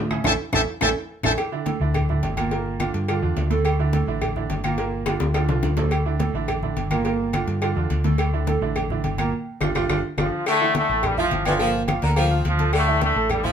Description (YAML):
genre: latin, salsa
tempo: 211 BPM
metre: 4/4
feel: straight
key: D minor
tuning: A4 = 440 Hz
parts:
  - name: bright baby grand piano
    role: accompaniment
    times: 0.0-13.5 s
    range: A2 to Bb5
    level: -26 LUFS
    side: right 6 dB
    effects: none
  - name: hollow-body short-scale fingered electric bass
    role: bass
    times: 0.0-13.5 s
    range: G1 to A2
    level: -24 LUFS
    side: left 1 dB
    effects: none
  - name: claves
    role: percussion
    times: 0.1-13.4 s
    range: none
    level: -34 LUFS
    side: left 4 dB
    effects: none
  - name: congas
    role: percussion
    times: 0.1-13.5 s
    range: none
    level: -30 LUFS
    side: left 3 dB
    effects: none
  - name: timbales and agogo bells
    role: percussion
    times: 0.1-13.4 s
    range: none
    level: -31 LUFS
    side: right 3 dB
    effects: none
  - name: bongos and cowbell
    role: percussion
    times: 0.2-13.4 s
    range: none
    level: -31 LUFS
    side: left 4 dB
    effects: none
  - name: clear trumpet section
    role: melody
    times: 0.3-1.3 s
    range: E5 to A5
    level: -22 LUFS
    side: left 3 dB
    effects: none
  - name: brilliant trombone section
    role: melody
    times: 10.2-13.5 s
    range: G2 to F4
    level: -22 LUFS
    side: left 2 dB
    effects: none
  - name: bright saxophone section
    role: second line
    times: 10.5-13.5 s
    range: D3 to F3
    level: -26 LUFS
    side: left 2 dB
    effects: none
room: moderate studio reverb, RT60 0.7 s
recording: minimal, uncompressed stereo recording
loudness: -20 LUFS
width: side -8 dB against mid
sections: 0.0-1.4 A section; 1.4-10.5 B section; 10.5-13.5 C section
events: band accent 0.2-1.4, 9.3-10.5; drum fill 0.7-1.4, 5.1-5.9, 9.9-10.5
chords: 0.2 A; 1.4 Dsus2; 2.5 Gm7; 3.6 Dsus2; 4.8 Gm7; 5.9 Dsus2; 7.1 Gm7; 8.2 Dsus2; 9.3 G5; 10.5 Dmadd9; 11.6 Gm7; 12.7 Dmadd9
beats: | 0.25 0.53 0.81 1.10 | 1.38 1.67 1.95 2.23 | 2.52 2.80 3.08 3.37 | 3.65 3.93 4.21 4.50 | 4.78 5.07 5.35 5.63 | 5.92 6.20 6.49 6.77 | 7.05 7.34 7.62 7.91 | 8.19 8.48 8.76 9.04 | 9.33 9.61 9.90 10.18 | 10.47 10.75 11.03 11.32 | 11.60 11.89 12.17 12.45 | 12.74 13.02 13.30